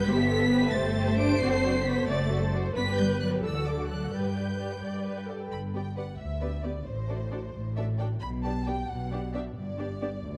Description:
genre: quick classical-period movement for string orchestra.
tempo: 89 BPM (dotted quarters).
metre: 6/8.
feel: straight.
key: G major.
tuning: A4 = 440 Hz.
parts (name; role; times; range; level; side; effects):
warm symphonic violin section; melody; 0.0-10.4 s; C5 to D7; -39 LUFS; equal; none.
warm symphonic violin section; second line; 0.0-10.1 s; F#4 to G5; -39 LUFS; equal; none.
warm symphonic viola section; accompaniment; 0.0-10.1 s; B3 to D5; -37 LUFS; equal; none.
dark symphonic double bass section; bass; 0.0-10.4 s; F#1 to G2; -34 LUFS; equal; none.
warm symphonic cello section; bass; 0.0-10.4 s; D2 to D4; -34 LUFS; equal; none.
room: moderate scoring stage reverb, RT60 1.9 s.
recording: dark, warm production.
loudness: -29 LUFS.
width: mono.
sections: 0.0-5.5 A section; 5.5-10.4 A section.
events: none.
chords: 0.1 Am7/G; 1.4 D7/F#; 2.8 G; 3.4 D; 4.1 G; 6.9 D7/A; 8.2 G/B; 9.6 G.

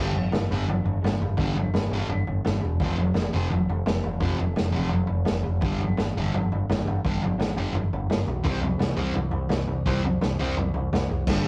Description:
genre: garage rock duo or trio.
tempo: 170 BPM.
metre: 4/4.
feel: straight.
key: unclear.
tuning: A4 = 441 Hz.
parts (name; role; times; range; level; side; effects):
thick fuzz guitar; riff; 0.0-11.5 s; F2 to C4; -30 LUFS; equal; distortion.
growling picked electric bass; bass; 0.0-11.5 s; E1 to C2; -30 LUFS; equal; overdrive, tube saturation.
vintage drum kit; drums; 0.2-11.4 s; crash cymbal, kick drum, snare drum, toms; -29 LUFS; equal; none.
room: light reverb.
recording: rough rehearsal-room recording, tube saturation.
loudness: -25 LUFS.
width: mono.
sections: 0.0-11.3 A section.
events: none.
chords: 0.0 G5; 2.8 F5; 5.6 G5; 8.5 C5.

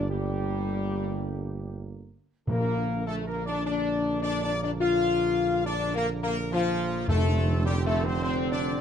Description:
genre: classical.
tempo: 104 BPM.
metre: 4/4.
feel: straight.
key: Bb major.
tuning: A4 = 438 Hz.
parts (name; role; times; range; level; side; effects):
mellow trumpet section; melody; 0.0-8.8 s; F4 to F5; -33 LUFS; right 1 dB; none.
mellow French horn section; sustained chords; 0.0-8.8 s; F3 to F4; -28 LUFS; left 5 dB; none.
warm trombone section; sustained chords; 0.0-8.8 s; D3 to C4; -36 LUFS; right 3 dB; none.
dark tuba; bass; 0.0-8.8 s; F1 to Bb1; -31 LUFS; right 4 dB; none.
timpani; percussion; 2.5-3.3, 7.1-7.9 s; F2 to Bb2; -28 LUFS; left 1 dB; none.
room: moderate large studio reverb, RT60 1.0 s.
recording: dark, warm production.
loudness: -25 LUFS.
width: side -8 dB against mid.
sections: 0.0-8.8 A section.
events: none.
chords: 0.0 Gm; 2.5 Bb; 7.1 F6.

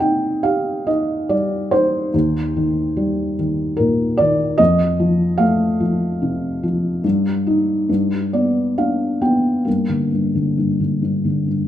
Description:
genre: classical, lyrical solo piano.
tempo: 66-75 BPM.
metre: 3/4.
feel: rubato.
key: C minor.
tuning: A4 = 440 Hz.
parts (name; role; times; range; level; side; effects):
felt-muted upright piano; solo; 0.0-11.7 s; Eb2 to G5; -16 LUFS; equal; none.
room: moderate recital hall reverb, RT60 1.3 s.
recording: minimal, uncompressed stereo recording.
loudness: -16 LUFS.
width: side -11 dB against mid.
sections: 0.0-9.7 A section; 9.7-11.7 B section.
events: felt piano fill 7.9-9.7.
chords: 0.0 Cm; 2.1 Eb; 4.6 F; 7.0 Ebadd9/G; 7.9 G; 9.7 Gm.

